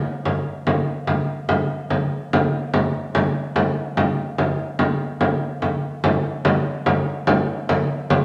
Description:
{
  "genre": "medieval",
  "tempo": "145 BPM",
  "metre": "3/4",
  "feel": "straight",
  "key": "none",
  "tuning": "none",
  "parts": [
    { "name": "frame drum", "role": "percussion", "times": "0.3-8.2 s", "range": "none", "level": "-22 LUFS", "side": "equal", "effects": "none" }
  ],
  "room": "wet large studio reverb, RT60 1.3 s",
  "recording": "none",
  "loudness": "-22 LUFS",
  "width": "mono",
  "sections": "0.0-6.0 A section; 6.0-8.2 A section",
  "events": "none",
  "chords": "none"
}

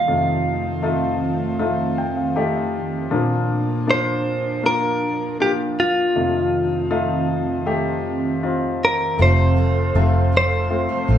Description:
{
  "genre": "pop ballad",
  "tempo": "79 BPM",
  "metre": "4/4",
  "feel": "straight",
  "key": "unclear",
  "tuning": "A4 = 445 Hz",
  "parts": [
    { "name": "direct-recorded clean electric guitar", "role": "melody", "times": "0.0-11.2 s", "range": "F4 to F5", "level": "-21 LUFS", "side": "equal", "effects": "none" },
    { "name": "warm grand piano", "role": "accompaniment", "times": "0.0-11.2 s", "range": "F2 to G5", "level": "-22 LUFS", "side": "left 2 dB", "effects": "none" },
    { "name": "airy breathy pad", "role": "sustained chords", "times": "0.0-11.2 s", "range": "Eb3 to C6", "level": "-26 LUFS", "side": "right 3 dB", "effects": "chorus" },
    { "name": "picked steel-string acoustic guitar", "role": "arpeggios", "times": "9.2-11.2 s", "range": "F2 to F4", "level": "-27 LUFS", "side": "right 5 dB", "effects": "none" },
    { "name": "vintage muted fingered electric bass", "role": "bass", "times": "9.2-11.2 s", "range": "F1 to A1", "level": "-17 LUFS", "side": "equal", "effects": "none" }
  ],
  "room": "wet large studio reverb, RT60 0.8 s",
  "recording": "band playing live in one room",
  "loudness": "-18 LUFS",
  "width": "side -10 dB against mid",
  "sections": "0.0-9.2 A section; 9.2-11.2 B section",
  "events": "grand piano fill 1.6-3.1",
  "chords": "0.1 F7; 3.1 Bb; 6.2 F7; 9.2 F"
}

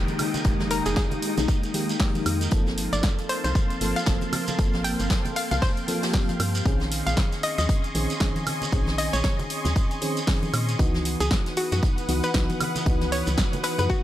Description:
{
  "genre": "deep house",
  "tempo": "116 BPM",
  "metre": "4/4",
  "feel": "swing 59% on 16ths",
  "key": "unclear",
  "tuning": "A4 = 438 Hz",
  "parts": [
    { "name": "soft string machine", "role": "sustained chords", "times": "0.0-14.0 s", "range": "Bb3 to Eb6", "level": "-35 LUFS", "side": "equal", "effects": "ensemble chorus, sidechain pumping" },
    { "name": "mellow FM electric piano", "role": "stabs", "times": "0.0-14.0 s", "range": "Eb3 to A4", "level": "-30 LUFS", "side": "equal", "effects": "chorus, sidechain pumping, digital delay" },
    { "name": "woody FM bass", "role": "bass", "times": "0.0-13.9 s", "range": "F1 to Bb2", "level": "-27 LUFS", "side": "equal", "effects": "sidechain pumping" },
    { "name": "downlifter", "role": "sound effects", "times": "0.0-2.5 s", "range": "none", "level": "-41 LUFS", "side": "equal", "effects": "none" },
    { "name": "granular cloud pad", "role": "texture", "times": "0.0-14.0 s", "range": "Fb3 to Eb6", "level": "-34 LUFS", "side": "left 2 dB", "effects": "built-in reverb, sidechain pumping" },
    { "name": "jazz brush drum kit", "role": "drums", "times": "0.1-14.0 s", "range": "hi-hat, snare drum", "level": "-37 LUFS", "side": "left 2 dB", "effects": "high-pass filter on hats, studio reverb, high-pass filter on snare, high-pass filter on room" },
    { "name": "punchy analog drum machine", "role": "drums", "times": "0.1-13.9 s", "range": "hi-hat, snare drum, woodblock", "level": "-30 LUFS", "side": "right 1 dB", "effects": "overdrive, studio reverb" },
    { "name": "congas", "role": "percussion", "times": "0.1-13.9 s", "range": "none", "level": "-34 LUFS", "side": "right 1 dB", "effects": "sidechain pumping on perc" },
    { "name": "shekere", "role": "percussion", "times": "0.1-14.0 s", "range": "none", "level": "-37 LUFS", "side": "right 4 dB", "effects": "none" },
    { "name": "electronic kick drum", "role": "drums", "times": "0.4-14.0 s", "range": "none", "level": "-24 LUFS", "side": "equal", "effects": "studio reverb" },
    { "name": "hollow square pluck", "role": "melody", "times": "0.7-14.0 s", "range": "Gb4 to G5", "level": "-30 LUFS", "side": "left 1 dB", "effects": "chorus, digital delay" }
  ],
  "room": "little or no reverb",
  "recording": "none",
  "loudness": "-22 LUFS",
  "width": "side -13 dB against mid",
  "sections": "0.0-14.0 A section",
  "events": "none",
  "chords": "0.0 Fm11; 2.5 Gm11; 6.7 Bbm11; 10.8 Dbm11"
}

